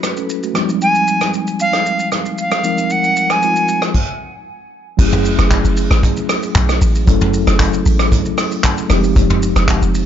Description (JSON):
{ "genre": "amapiano", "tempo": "115 BPM", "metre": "4/4", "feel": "straight", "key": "unclear", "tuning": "A4 = 439 Hz", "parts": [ { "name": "mellow tine electric piano", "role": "accompaniment", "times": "0.0-10.1 s", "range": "F3 to B4", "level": "-18 LUFS", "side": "equal", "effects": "medium stereo tremolo" }, { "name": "soft brush drum kit", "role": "drums", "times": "0.0-10.1 s", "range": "crash cymbal, handclaps, hi-hat, kick drum, rim click, shaker, toms", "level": "-17 LUFS", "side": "equal", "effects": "none" }, { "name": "bright reedy silver concert flute", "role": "melody", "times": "0.8-3.8 s", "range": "F5 to Ab5", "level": "-16 LUFS", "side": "equal", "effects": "analog delay" }, { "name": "deep log drum bass", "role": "bass", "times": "5.0-10.1 s", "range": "F1 to B1", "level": "-15 LUFS", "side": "equal", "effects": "none" } ], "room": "small room ambience", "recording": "nothing above 7.5 kHz", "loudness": "-13 LUFS", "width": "side -10 dB against mid", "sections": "0.0-5.0 A section; 5.0-10.1 B section", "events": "stop 3.9-5.0; drop 5.0-10.1", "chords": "0.0 F#m9; 0.6 Fm9; 5.0 F#m9; 8.9 Fm9" }